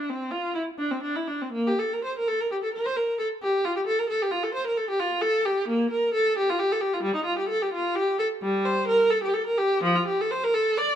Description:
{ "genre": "classical, baroque-style suite movement for unaccompanied viola", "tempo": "87 BPM (dotted quarters)", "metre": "12/8", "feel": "rubato", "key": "F major", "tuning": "A4 = 440 Hz", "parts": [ { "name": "rich viola", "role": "solo", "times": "0.0-11.0 s", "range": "F3 to D5", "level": "-23 LUFS", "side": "equal", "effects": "none" } ], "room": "light reverb", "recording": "close, detailed microphones", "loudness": "-23 LUFS", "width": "side -10 dB against mid", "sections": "0.0-11.0 A section", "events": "none", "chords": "none" }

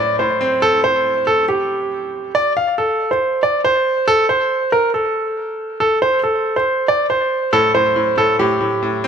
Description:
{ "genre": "hip hop", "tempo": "139 BPM", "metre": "4/4", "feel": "half-time", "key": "A phrygian", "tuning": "A4 = 440 Hz", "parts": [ { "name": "warm concert grand piano", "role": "melody", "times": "0.0-9.1 s", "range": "G4 to F5", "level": "-15 LUFS", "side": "right 1 dB", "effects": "digital delay" }, { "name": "bright grand piano", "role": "accompaniment", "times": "0.0-2.4, 7.5-9.1 s", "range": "A2 to C4", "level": "-22 LUFS", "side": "left 3 dB", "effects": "none" } ], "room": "moderate recital hall reverb, RT60 1.4 s, studio reverb", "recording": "none", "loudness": "-14 LUFS", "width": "side -7 dB against mid", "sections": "0.0-9.1 A section", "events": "none", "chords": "0.0 Am7; 2.3 N.C.; 5.8 Am7" }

